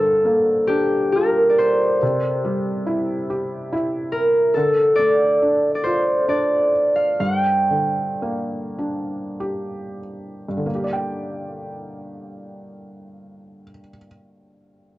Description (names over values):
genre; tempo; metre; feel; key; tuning
celtic folk, Celtic slow air; 43-72 BPM; 3/4; rubato; G minor; A4 = 440 Hz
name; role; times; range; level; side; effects
concert harp; melody; 0.0-9.3 s; G4 to G5; -18 LUFS; equal; cassette tape
felt-muted upright piano; accompaniment; 0.0-15.0 s; G2 to G5; -26 LUFS; equal; cassette tape
room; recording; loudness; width
light reverb; home recording on cassette; -18 LUFS; side -16 dB against mid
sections
0.0-10.7 A section; 10.7-14.7 B section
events
slowing down 4.5-10.7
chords
0.0 Gm7; 2.0 C; 4.5 Dm; 7.2 Gm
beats
0.25 1.15 | 2.01 2.86 3.71 | 4.54 5.40 6.27 | 7.20 8.21 9.37 | 10.69 12.02 13.32